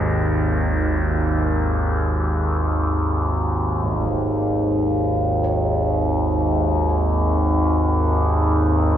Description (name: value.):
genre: dark ambient drone.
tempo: free time.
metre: none.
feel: none.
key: unclear.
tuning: A4 = 440 Hz.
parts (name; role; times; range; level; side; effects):
gamelan-type bossed gongs; arpeggios; 0.0-9.0 s; none; barely audible; none; none.
overtone-sweeping drone; drone; 0.0-9.0 s; G#1 to D#2; -18 LUFS; equal; chorus, built-in reverb.
impact; percussion; 3.8-4.0 s; none; -34 LUFS; equal; low-pass filter on sfx.
room: moderate plate reverb, RT60 2.8 s.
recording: echo-heavy mix.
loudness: -18 LUFS.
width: side -10 dB against mid.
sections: 0.0-3.8 A section; 3.8-9.0 B section.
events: fade-in on impacts and reversed cymbals 3.8-9.0.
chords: 0.0 G#5.